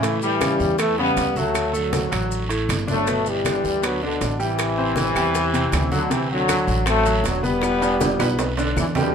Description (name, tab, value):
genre	latin, salsa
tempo	158 BPM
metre	4/4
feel	straight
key	unclear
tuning	A4 = 440 Hz
part	brilliant trombone section	melody	0.0-9.1 s	B2 to B3	-22 LUFS	left 1 dB	none
part	bright baby grand piano	accompaniment	0.0-9.1 s	A2 to D5	-26 LUFS	equal	none
part	upright bass	bass	0.0-9.1 s	E1 to A2	-27 LUFS	equal	none
part	bongos	percussion	0.0-9.1 s	none	-33 LUFS	left 7 dB	none
part	congas	percussion	0.0-9.1 s	none	-30 LUFS	right 1 dB	none
part	guiro	percussion	0.0-9.1 s	none	-35 LUFS	right 5 dB	none
part	maracas	percussion	0.0-9.1 s	none	-37 LUFS	left 7 dB	none
part	timbales	percussion	0.0-9.0 s	none	-29 LUFS	right 7 dB	none
part	claves	percussion	0.4-9.0 s	none	-34 LUFS	left 5 dB	none
room	moderate studio reverb, RT60 0.7 s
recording	minimal, uncompressed stereo recording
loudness	-18 LUFS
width	side -7 dB against mid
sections	0.0-9.1 A section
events	drum fill 1.6-3.1, 7.6-9.1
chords	0.0 A7; 1.6 D; 3.1 Gmaj7; 4.6 Am7; 6.1 D7; 7.6 Em7